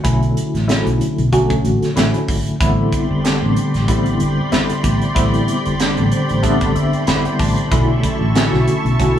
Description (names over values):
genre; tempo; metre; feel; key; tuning
electric jazz fusion; 94 BPM; 4/4; swing 55% on 16ths; A dorian; A4 = 439 Hz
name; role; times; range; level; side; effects
tine electric piano; accompaniment; 0.0-9.2 s; D3 to A5; -18 LUFS; left 1 dB; fast tremolo, phaser
crisp fusion drum kit; drums; 0.0-9.2 s; hi-hat, kick drum, snare drum; -20 LUFS; right 1 dB; none
fingered electric bass; bass; 0.1-9.2 s; G1 to B1; -19 LUFS; equal; none
soft additive organ-like pad; sustained chords; 2.8-9.2 s; E4 to C#6; -24 LUFS; right 1 dB; ensemble chorus, built-in reverb
room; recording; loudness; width
moderate studio reverb, RT60 0.8 s; band playing live in one room, studio reverb; -14 LUFS; side -10 dB against mid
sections
0.0-9.2 A section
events
tine electric piano fill 5.8-7.7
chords
0.0 Bm11; 2.6 Am11; 7.7 Bm11